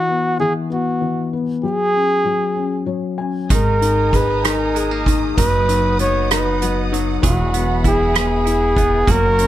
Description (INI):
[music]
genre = six-eight pop ballad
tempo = 64 BPM (dotted quarters)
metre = 6/8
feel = straight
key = unclear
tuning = A4 = 435 Hz
[part]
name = warm flugelhorn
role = melody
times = 0.0-9.5 s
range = F#4 to C#5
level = -18 LUFS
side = equal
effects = none
[part]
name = felt-muted upright piano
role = accompaniment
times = 0.0-9.5 s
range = E3 to G#5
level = -22 LUFS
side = left 5 dB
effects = none
[part]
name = dark studio string section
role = sustained chords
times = 3.5-9.5 s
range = G#4 to D#6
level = -28 LUFS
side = equal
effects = none
[part]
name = direct-recorded clean electric guitar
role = arpeggios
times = 3.5-9.5 s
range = D#3 to G#4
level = -28 LUFS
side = right 6 dB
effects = none
[part]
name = upright bass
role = bass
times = 3.5-9.5 s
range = E1 to G#1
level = -21 LUFS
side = right 1 dB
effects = none
[part]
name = soft-mallet drum kit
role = drums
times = 3.5-9.5 s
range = hi-hat, kick drum, rim click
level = -20 LUFS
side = right 1 dB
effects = none
[sound]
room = studio reverb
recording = none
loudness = -15 LUFS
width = side -13 dB against mid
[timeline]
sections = 0.0-9.5 A section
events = felt piano fill 2.6-3.5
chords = 0.0 Esus2; 1.6 F#sus2; 3.5 G#sus2; 5.4 B/F#; 7.2 Eadd9